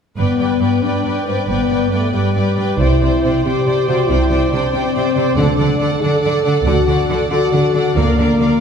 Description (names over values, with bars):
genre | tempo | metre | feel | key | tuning
cinematic | 92 BPM (dotted quarters) | 6/8 | straight | G major | A4 = 438 Hz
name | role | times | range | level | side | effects
rich symphonic violin section | melody | 0.2-8.6 s | F5 to G5 | -28 LUFS | left 2 dB | none
warm symphonic violin section | second line | 0.2-8.6 s | D5 | -24 LUFS | equal | none
warm symphonic viola section | accompaniment | 0.2-8.6 s | A4 to C5 | -23 LUFS | right 2 dB | none
mellow French horn section | sustained chords | 0.2-8.6 s | G3 to A4 | -17 LUFS | left 4 dB | none
rich studio cello section | bass | 0.2-8.5 s | G2 to D3 | -20 LUFS | right 3 dB | none
warm symphonic double bass section | bass | 0.2-8.2 s | G1 to D2 | -21 LUFS | right 2 dB | none
timpani | percussion | 5.4-6.0 s | D3 | -24 LUFS | left 1 dB | none
room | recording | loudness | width
wet concert hall reverb, RT60 2.0 s | heard from further back in the room | -13 LUFS | side -7 dB against mid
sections
0.2-8.6 A section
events
none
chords
0.2 G; 2.8 Cadd9; 5.4 D; 8.0 Bb/D